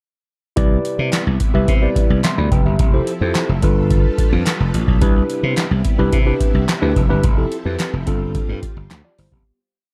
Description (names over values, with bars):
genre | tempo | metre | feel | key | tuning
early-eighties boogie funk | 108 BPM | 4/4 | straight | C major | A4 = 439 Hz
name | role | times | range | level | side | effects
tine electric piano | accompaniment | 0.6-9.6 s | B3 to C6 | -24 LUFS | equal | none
string machine, violins | sustained chords | 0.6-9.4 s | C3 to B4 | -30 LUFS | equal | ensemble chorus
slap bass | bass | 0.6-9.4 s | F1 to C3 | -20 LUFS | equal | none
booming analog drum machine | drums | 0.6-9.5 s | handclaps, hi-hat, kick drum, snare drum | -20 LUFS | equal | none
room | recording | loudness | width
digital ambience | dark, warm production | -17 LUFS | mono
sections
0.6-9.5 verse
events
fade-out 7.2-9.5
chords
0.6 Cmaj7; 2.8 Fmaj7; 3.6 G9; 5.0 Cmaj7; 7.2 Fmaj7; 8.1 G7sus4